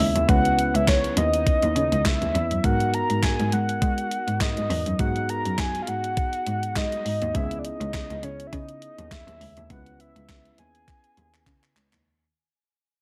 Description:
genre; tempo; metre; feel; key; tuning
early-eighties boogie funk; 102 BPM; 4/4; swing 56% on 16ths; unclear; A4 = 442 Hz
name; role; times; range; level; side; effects
soft octave-layered synth lead; melody; 0.0-11.7 s; C#5 to A#5; -29 LUFS; equal; chorus, tape echo
overdriven tine electric piano; accompaniment; 0.0-12.0 s; B3 to B4; -34 LUFS; equal; none
rich cello; bass; 0.0-12.0 s; C#2 to G#3; -29 LUFS; equal; none
crisp 8-bit digital drum machine; drums; 0.0-12.0 s; handclaps, hi-hat, kick drum, snare drum; -28 LUFS; equal; gated reverb
room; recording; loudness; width
light reverb; none; -24 LUFS; mono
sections
0.0-12.1 A section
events
fade-out 0.8-12.1; drum fill 10.9-12.1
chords
0.0 C#m9; 2.6 G#m9; 7.3 C#m9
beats
| 0.29 0.88 1.47 2.05 | 2.64 3.23 3.82 4.41 | 4.99 5.58 6.17 6.76 | 7.35 7.93 8.52 9.11 | 9.70 10.29 10.88 11.46

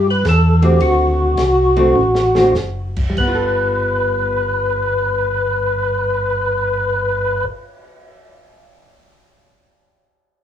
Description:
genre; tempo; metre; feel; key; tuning
soul jazz organ trio; 96-110 BPM; 4/4; swing 68% on 8ths; G mixolydian; A4 = 440 Hz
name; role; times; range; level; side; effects
percussive tonewheel organ; melody; 0.0-7.5 s; F#4 to B4; -16 LUFS; left 1 dB; slow rotary speaker, overdrive, cassette tape, plate reverb
mellow tonewheel organ; bass; 0.0-7.4 s; F#1 to G2; -19 LUFS; equal; chorus vibrato, slow rotary speaker
compact cocktail drum kit; drums; 0.2-8.1 s; crash cymbal, cymbal swell, hi-hat, kick drum, ride cymbal, snare drum, toms; -26 LUFS; equal; cassette tape
archtop guitar, miked and amplified; accompaniment; 0.6-7.7 s; D3 to A4; -20 LUFS; right 2 dB; cassette tape, plate reverb
room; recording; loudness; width
light reverb; home recording on cassette; -14 LUFS; side -9 dB against mid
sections
0.0-3.2 A section; 3.2-8.2 B section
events
slowing down 0.0-3.2; drum fill 2.0-2.6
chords
0.0 Am9; 0.8 D7; 3.2 G9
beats
0.26 | 0.81 1.38 1.96 2.55 | 3.17 3.80 4.42 5.05 | 5.67 6.30 6.92 7.55

